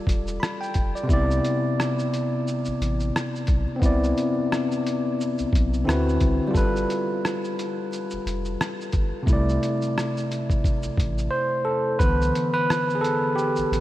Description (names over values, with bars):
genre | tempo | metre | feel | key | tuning
lo-fi hip hop | 88 BPM | 4/4 | swing 60% on 16ths | C major | A4 = 440 Hz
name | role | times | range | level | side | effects
barky tine electric piano | accompaniment | 0.0-13.8 s | C3 to B5 | -24 LUFS | equal | none
soft dub sub bass | bass | 0.1-13.8 s | E1 to D2 | -26 LUFS | equal | none
lo-fi sampler-style drum kit | drums | 0.1-13.8 s | hi-hat, kick drum, rim click, shaker | -26 LUFS | equal | none
room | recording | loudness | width
moderate cathedral reverb, RT60 6.8 s | dreamy mix soaked in reverb, vinyl crackle | -21 LUFS | side -15 dB against mid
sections
0.0-12.0 A section; 12.0-13.8 B section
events
tine electric piano solo 12.0-13.8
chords
0.0 G9; 1.1 Cmaj9; 5.9 D13; 6.5 G9; 9.3 C69; 12.0 Cmaj9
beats
0.41 | 1.09 1.77 2.45 3.14 | 3.82 4.50 5.18 5.86 | 6.54 7.23 7.91 8.59 | 9.27 9.95 10.64 11.32 | 12.00 12.68 13.36